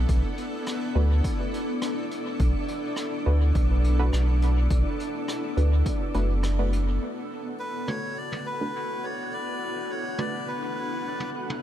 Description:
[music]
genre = ambient dub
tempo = 104 BPM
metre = 4/4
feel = swing 54% on 16ths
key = B minor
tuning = A4 = 440 Hz
[part]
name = granular cloud pad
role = sustained chords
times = 0.0-11.6 s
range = B3 to F#5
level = -33 LUFS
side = left 1 dB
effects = built-in reverb
[part]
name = filtered dub chord stab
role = stabs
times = 0.0-10.4 s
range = A3 to B4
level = -36 LUFS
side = right 2 dB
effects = chorus, dub echo
[part]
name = warm sub bass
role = bass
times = 0.0-7.0 s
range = F#1 to D2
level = -21 LUFS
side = equal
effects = none
[part]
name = wind-like tuned noise texture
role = texture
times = 0.0-11.6 s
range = D4 to F#5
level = -34 LUFS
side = equal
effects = built-in reverb
[part]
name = electronic kick drum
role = drums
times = 0.1-6.0 s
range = none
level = -28 LUFS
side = equal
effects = overdrive
[part]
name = jazz brush drum kit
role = drums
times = 0.1-11.6 s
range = hi-hat, rim click, toms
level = -39 LUFS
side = equal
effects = low-pass filter on hats, low-pass filter on toms, low-pass filter on snare, low-pass filter on room, dub echo
[part]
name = melodica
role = melody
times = 7.6-11.3 s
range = B4 to D5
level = -32 LUFS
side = equal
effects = dub echo
[sound]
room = small room ambience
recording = none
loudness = -24 LUFS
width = side -11 dB against mid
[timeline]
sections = 0.0-7.0 A section; 7.0-11.6 B section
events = band accent 6.4; filter sweep on synth stab 7.0-11.6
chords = 0.0 Bm7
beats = | 0.09 0.67 1.24 1.82 | 2.40 2.97 3.55 4.13 | 4.71 5.28 5.86 6.44 | 7.01 7.59 8.17 8.74 | 9.32 9.90 10.47 11.05

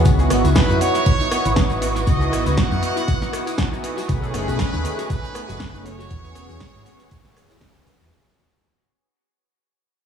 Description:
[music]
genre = nu-disco, nu disco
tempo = 119 BPM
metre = 4/4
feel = swing 56% on 16ths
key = C# minor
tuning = A4 = 440 Hz
[part]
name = warm analog pad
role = accompaniment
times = 0.0-7.9 s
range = A3 to G#4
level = -25 LUFS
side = right 1 dB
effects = chorus, sidechain pumping, dub echo
[part]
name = warm studio violin section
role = sustained chords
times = 0.0-8.1 s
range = A3 to D#6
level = -30 LUFS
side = right 3 dB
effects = sidechain pumping
[part]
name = fingered electric bass with an envelope filter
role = bass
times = 0.0-8.1 s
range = E1 to G#2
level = -22 LUFS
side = equal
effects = none
[part]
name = tambourine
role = percussion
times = 0.0-8.1 s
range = none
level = -42 LUFS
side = left 1 dB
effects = dub echo
[part]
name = analog pluck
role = arpeggios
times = 0.1-8.1 s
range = B3 to C#5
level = -30 LUFS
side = left 6 dB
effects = chorus, cassette tape, sidechain pumping, dub echo
[part]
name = electronic kick drum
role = drums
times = 0.1-7.7 s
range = none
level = -20 LUFS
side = equal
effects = studio reverb
[part]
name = house drum kit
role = drums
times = 0.1-8.1 s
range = hi-hat, rim click, shaker, snare drum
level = -27 LUFS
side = right 1 dB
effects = studio reverb, dub echo
[part]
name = brilliant trumpet section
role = melody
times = 0.6-7.9 s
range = B4 to F#5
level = -28 LUFS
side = right 2 dB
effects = dub echo
[sound]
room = light reverb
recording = echo-heavy mix, studio reverb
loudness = -17 LUFS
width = side -8 dB against mid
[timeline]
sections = 0.0-8.1 A section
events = drop 0.0-8.1; fade-out 0.1-8.1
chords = 0.1 C#m11; 3.8 B13; 6.1 E69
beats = | 0.05 0.56 1.06 1.57 | 2.07 2.58 3.08 3.58 | 4.09 4.59 5.10 5.60 | 6.10 6.61 7.11 7.62

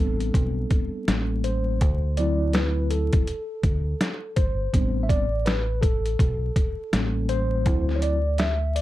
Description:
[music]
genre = hip hop, jazz-hop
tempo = 82 BPM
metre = 4/4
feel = swing 60% on 16ths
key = A dorian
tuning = A4 = 439 Hz
[part]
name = mellow tine electric piano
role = accompaniment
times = 0.0-8.8 s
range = F#3 to E5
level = -28 LUFS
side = left 1 dB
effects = medium stereo tremolo
[part]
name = deep dub fingered electric bass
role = bass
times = 0.0-8.8 s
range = G1 to D2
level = -25 LUFS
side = equal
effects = none
[part]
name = trip hop sampler-style drum kit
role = drums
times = 0.2-8.8 s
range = hi-hat, kick drum, snare drum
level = -23 LUFS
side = equal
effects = none
[sound]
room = light reverb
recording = dark, warm production, vinyl crackle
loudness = -21 LUFS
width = side -15 dB against mid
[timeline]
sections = 0.0-8.8 A section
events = tine electric piano solo 0.0-8.8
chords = 0.0 Am11; 1.1 A7b9; 1.8 D9; 4.7 Am11; 6.9 A7b9; 7.7 D9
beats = 0.34 1.08 | 1.81 2.54 3.27 4.00 | 4.73 5.47 6.20 6.93 | 7.66 8.39

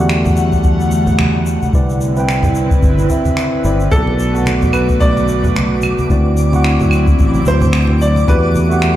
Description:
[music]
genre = sunset chillout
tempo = 110 BPM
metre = 4/4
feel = swing 57% on 16ths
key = E minor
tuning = A4 = 439 Hz
[part]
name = tine electric piano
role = accompaniment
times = 0.0-9.0 s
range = A3 to G5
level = -20 LUFS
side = equal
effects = auto-pan, digital delay
[part]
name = airy breathy pad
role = sustained chords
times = 0.0-9.0 s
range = D3 to F#5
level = -20 LUFS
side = equal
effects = chorus
[part]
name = fretless electric bass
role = bass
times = 0.0-9.0 s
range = G1 to E2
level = -15 LUFS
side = equal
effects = none
[part]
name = shaker, finger snaps and claves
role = drums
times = 0.1-8.9 s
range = none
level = -24 LUFS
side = right 1 dB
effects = none
[part]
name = congas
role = percussion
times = 0.3-9.0 s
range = none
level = -20 LUFS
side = right 1 dB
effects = none
[part]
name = electronic kick drum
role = drums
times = 0.5-8.4 s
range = none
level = -14 LUFS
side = equal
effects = none
[part]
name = bright baby grand piano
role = melody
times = 3.9-9.0 s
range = A4 to D5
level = -20 LUFS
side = equal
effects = digital delay
[part]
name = twinkling granular texture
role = texture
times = 4.3-9.0 s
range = D6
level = -27 LUFS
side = right 2 dB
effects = built-in reverb
[sound]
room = light reverb, studio reverb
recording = played on a big sound system in a bare room, stone room reverb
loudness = -11 LUFS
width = side -13 dB against mid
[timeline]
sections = 0.0-9.0 A section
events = none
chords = 0.0 Em11; 1.7 Cmaj9; 3.9 Bm7; 6.1 D9; 8.3 Em11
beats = 0.10 0.65 1.19 | 1.74 2.28 2.83 3.37 | 3.92 4.46 5.01 5.55 | 6.10 6.64 7.19 7.74 | 8.28 8.83

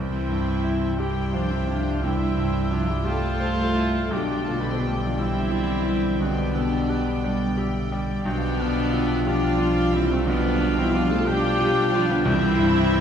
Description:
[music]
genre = classical, romantic movement for piano and orchestra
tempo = 59 BPM (dotted quarters)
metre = 12/8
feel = rubato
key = unclear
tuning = A4 = 440 Hz
[part]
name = clear baby grand piano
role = melody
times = 0.0-13.0 s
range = B1 to C5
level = -26 LUFS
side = left 1 dB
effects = none
[part]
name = warm studio violin section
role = melody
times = 0.0-13.0 s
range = C5 to C6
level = -38 LUFS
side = left 2 dB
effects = none
[part]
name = clear studio violin section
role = second line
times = 0.0-13.0 s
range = C5 to G5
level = -36 LUFS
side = equal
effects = none
[part]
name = warm clarinet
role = second line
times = 0.0-13.0 s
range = C4 to C5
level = -33 LUFS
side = left 4 dB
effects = none
[part]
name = warm oboe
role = second line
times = 0.0-13.0 s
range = A4 to G5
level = -35 LUFS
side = left 1 dB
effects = none
[part]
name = dark studio viola section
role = accompaniment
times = 0.0-13.0 s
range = C4 to C5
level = -29 LUFS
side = right 2 dB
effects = none
[part]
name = clear trombone section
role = sustained chords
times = 0.0-13.0 s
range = C3 to G3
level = -34 LUFS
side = right 2 dB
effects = none
[part]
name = mellow French horn section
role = sustained chords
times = 0.0-13.0 s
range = A3 to A4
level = -31 LUFS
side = left 2 dB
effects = none
[part]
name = bright trumpet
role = stabs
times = 0.0-13.0 s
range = A3 to A4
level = -32 LUFS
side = right 1 dB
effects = none
[part]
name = dark studio cello section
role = bass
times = 0.0-13.0 s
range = C3 to C4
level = -31 LUFS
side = right 2 dB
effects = none
[part]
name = dark studio double bass section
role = bass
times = 0.0-13.0 s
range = B1 to C2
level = -29 LUFS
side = right 1 dB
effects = none
[part]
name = timpani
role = percussion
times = 12.3-13.0 s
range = C3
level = -30 LUFS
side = equal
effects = none
[sound]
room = wet concert hall reverb, RT60 2.1 s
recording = heard from further back in the room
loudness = -20 LUFS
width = side -8 dB against mid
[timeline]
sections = 0.0-13.0 A section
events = none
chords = 0.0 C; 4.1 G7/B; 12.3 C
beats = 0.99 2.03 3.06 | 4.11 5.17 6.21 7.24 | 8.25 9.27 10.27 11.27 | 12.27

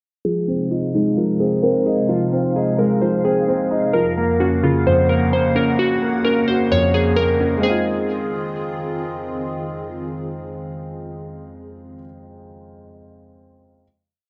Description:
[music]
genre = hip hop, trap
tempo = 130 BPM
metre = 4/4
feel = half-time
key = F phrygian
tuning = A4 = 440 Hz
[part]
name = glassy digital keys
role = melody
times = 0.2-9.0 s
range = Eb4 to Db5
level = -23 LUFS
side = equal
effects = chorus, low-pass filter
[part]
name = dark grand piano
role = accompaniment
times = 0.2-13.8 s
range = F2 to Gb4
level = -23 LUFS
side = equal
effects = low-pass filter
[part]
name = hollow soft pad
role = sustained chords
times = 0.2-12.0 s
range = F2 to Gb5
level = -28 LUFS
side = equal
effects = ensemble chorus, low-pass filter
[sound]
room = moderate scoring stage reverb, RT60 1.8 s, studio reverb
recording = dark, warm production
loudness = -19 LUFS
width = mono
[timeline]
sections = 0.2-7.6 breakdown; 7.6-11.3 final chord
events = filter sweep 0.2-7.6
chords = 0.2 Fm7; 3.9 Gbmaj7/F; 7.6 Fm7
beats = | 0.25 0.71 1.17 1.63 | 2.10 2.56 3.02 3.48 | 3.94 4.40 4.87 5.33 | 5.79 6.25 6.71 7.17 | 7.63 8.10 8.56 9.02 | 9.48 9.94 10.40 10.87

